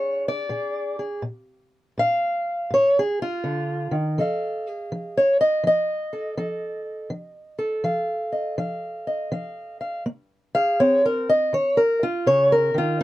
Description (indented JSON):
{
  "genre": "acoustic country blues, solo or duo",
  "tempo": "82 BPM",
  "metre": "4/4",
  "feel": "swing 64% on 8ths",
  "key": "unclear",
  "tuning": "A4 = 436 Hz",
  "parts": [
    { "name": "fingerpicked steel-string acoustic guitar", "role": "solo", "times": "0.0-13.0 s", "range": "Bb2 to F5", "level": "-20 LUFS", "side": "equal", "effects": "none" }
  ],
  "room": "moderate booth ambience, RT60 0.2 s",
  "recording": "dark, warm production",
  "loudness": "-20 LUFS",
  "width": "side -16 dB against mid",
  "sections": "0.0-13.0 A section",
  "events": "steel-string acoustic guitar solo 0.0-13.0",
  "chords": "0.0 Bb7; 4.2 F7; 10.1 Bbm11; 11.5 Db69"
}